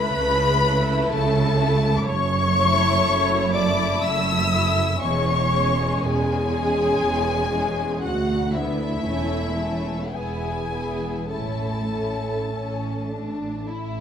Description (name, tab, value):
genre	classical, slow romantic movement for string orchestra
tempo	49-65 BPM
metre	3/4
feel	rubato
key	A major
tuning	A4 = 439 Hz
part	warm symphonic violin section	melody	0.0-13.7 s	E5 to E6	-26 LUFS	left 5 dB	none
part	warm symphonic violin section	second line	0.0-14.0 s	G#3 to E4	-29 LUFS	left 3 dB	none
part	dark symphonic viola section	accompaniment	0.0-13.7 s	E4 to E5	-26 LUFS	right 1 dB	none
part	warm symphonic cello section	bass	0.0-14.0 s	D2 to C#3	-27 LUFS	right 3 dB	none
part	warm symphonic double bass section	bass	0.0-14.0 s	E1 to D2	-27 LUFS	right 3 dB	none
room	wet recital hall reverb, RT60 1.2 s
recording	none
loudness	-20 LUFS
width	side -8 dB against mid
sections	0.0-14.0 A section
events	none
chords	0.0 A/C#; 2.0 F#m7; 5.0 C#m/E; 8.0 Bm/D; 9.0 A/E; 10.1 E; 11.3 A